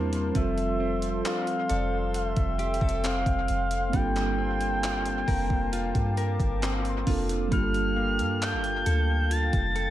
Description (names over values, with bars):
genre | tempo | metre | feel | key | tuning
contemporary R&B | 67 BPM | 4/4 | straight | G dorian | A4 = 444 Hz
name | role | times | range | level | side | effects
mellow tine electric piano | accompaniment | 0.0-9.9 s | G3 to Bb4 | -32 LUFS | right 4 dB | medium stereo tremolo
hollow soft pad | sustained chords | 0.0-9.9 s | Bb3 to D6 | -37 LUFS | equal | chorus
direct-recorded clean electric guitar | arpeggios | 0.0-9.9 s | C3 to Bb4 | -34 LUFS | left 8 dB | dub echo
soft 808-style bass | bass | 0.0-9.9 s | F1 to G2 | -29 LUFS | equal | none
clean 12-bit digital drum machine | drums | 0.1-9.9 s | handclaps, hi-hat, kick drum | -31 LUFS | equal | overdrive
gliding portamento lead | melody | 0.4-9.9 s | E5 to A6 | -30 LUFS | equal | chorus, dub echo
glassy wavetable pluck | texture | 1.7-9.9 s | D5 to C6 | -44 LUFS | right 1 dB | none
room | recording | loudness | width
light reverb | echo-heavy mix | -24 LUFS | side -13 dB against mid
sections
0.0-7.5 A section; 7.5-9.9 A section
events
none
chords
0.4 Fmaj7; 3.9 Gm11